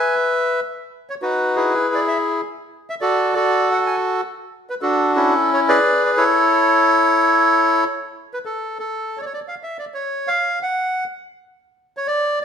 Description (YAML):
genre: tango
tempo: 132 BPM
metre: 4/4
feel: rubato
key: A major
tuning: A4 = 440 Hz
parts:
  - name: bandoneon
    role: solo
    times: 0.0-12.4 s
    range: C#4 to G#5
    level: -16 LUFS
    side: equal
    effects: none
room: wet stone room reverb, RT60 1.3 s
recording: band playing live in one room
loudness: -16 LUFS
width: side -7 dB against mid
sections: 0.0-8.1 A section; 8.1-12.4 A section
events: none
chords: 0.0 E; 0.9 Emaj9; 1.8 E; 2.7 F#m; 4.5 Bm11 (rootless); 5.4 C#m7; 5.8 E7; 6.3 A; 8.1 N.C.